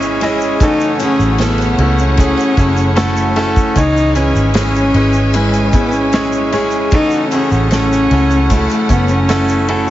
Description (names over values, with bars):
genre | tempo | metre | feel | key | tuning
pop ballad | 76 BPM | 4/4 | straight | unclear | A4 = 437 Hz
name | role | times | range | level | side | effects
dark cello | melody | 0.0-9.7 s | G#3 to D#4 | -16 LUFS | left 1 dB | none
clear concert grand piano | accompaniment | 0.0-9.9 s | G#2 to D#5 | -17 LUFS | right 1 dB | none
warm symphonic string section | sustained chords | 0.0-9.9 s | C#5 to G#5 | -25 LUFS | right 1 dB | none
picked steel-string acoustic guitar | arpeggios | 0.0-9.9 s | F#2 to G#4 | -26 LUFS | left 7 dB | none
vintage muted fingered electric bass | bass | 0.0-9.9 s | F#1 to C#2 | -16 LUFS | equal | none
tube shaker | percussion | 0.0-9.7 s | none | -34 LUFS | right 7 dB | none
unplugged drum kit | drums | 0.2-9.9 s | kick drum, ride cymbal, snare drum | -20 LUFS | equal | none
room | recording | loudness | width
light reverb, small room ambience | heavily compressed radio sound, multiband compression, nothing above 7.7 kHz | -11 LUFS | side -14 dB against mid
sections
0.0-9.9 A section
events
none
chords
0.0 C#m; 0.6 F#m7; 3.8 C#m; 6.9 F#m7